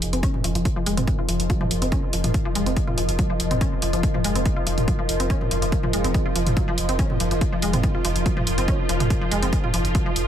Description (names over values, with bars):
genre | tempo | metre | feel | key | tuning
driving peak-time techno | 142 BPM | 4/4 | straight | F minor | A4 = 439 Hz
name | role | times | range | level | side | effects
saturated sub bass | bass | 0.0-10.3 s | F1 | -27 LUFS | equal | tube saturation, sidechain pumping, low-pass filter
swarming drone | drone | 0.1-10.3 s | F3 to F4 | -30 LUFS | left 1 dB | built-in reverb, sidechain pumping
punchy analog drum machine | drums | 0.0-10.2 s | hi-hat, toms | -28 LUFS | right 1 dB | overdrive, sidechain pumping on hats, sidechain pumping on toms, sidechain pumping on cymbals
deep dark ambient pad | texture | 0.0-10.3 s | F4 to Ab5 | -30 LUFS | right 1 dB | chorus, built-in reverb, sidechain pumping
resonant blip pluck | riff | 0.1-10.1 s | F3 to F4 | -28 LUFS | left 1 dB | chorus, tube saturation, cassette tape, sidechain pumping, tape echo
electronic kick drum | drums | 0.2-10.0 s | none | -23 LUFS | equal | overdrive
room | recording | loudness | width
light reverb, digital ambience | none | -20 LUFS | side -10 dB against mid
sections
0.0-10.3 A section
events
none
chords
0.0 Fm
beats
0.23 | 0.65 1.08 1.50 1.92 | 2.34 2.77 3.19 3.61 | 4.03 4.46 4.88 5.30 | 5.72 6.15 6.57 6.99 | 7.41 7.84 8.26 8.68 | 9.10 9.53 9.95